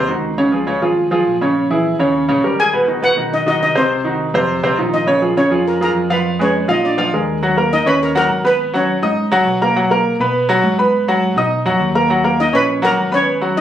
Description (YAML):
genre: latin, salsa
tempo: 205 BPM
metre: 4/4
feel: straight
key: unclear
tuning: A4 = 441 Hz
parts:
  - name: steel pan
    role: melody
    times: 0.0-0.2, 2.6-9.6, 12.4-13.6 s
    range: C4 to Cb6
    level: -18 LUFS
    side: left 1 dB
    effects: none
  - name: clear grand piano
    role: accompaniment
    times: 0.0-13.6 s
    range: Cb3 to Eb6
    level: -15 LUFS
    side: right 1 dB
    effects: none
  - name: deep dub fingered electric bass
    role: bass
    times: 0.0-13.6 s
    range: Ab1 to B2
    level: -24 LUFS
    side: left 1 dB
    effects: none
room: moderate studio ambience, RT60 0.5 s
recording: recorded on a phone in the room, club reverb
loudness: -13 LUFS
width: side -10 dB against mid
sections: 0.0-7.4 A section; 7.4-13.6 B section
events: none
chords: 0.4 Db; 1.6 Bbm7b5; 2.1 Eb7; 2.7 Abm7; 3.9 Cdim; 4.5 F5; 5.1 Bbm7; 6.8 Bb7; 7.4 Abm11; 9.8 B5; 10.9 Abm9; 12.1 Abm11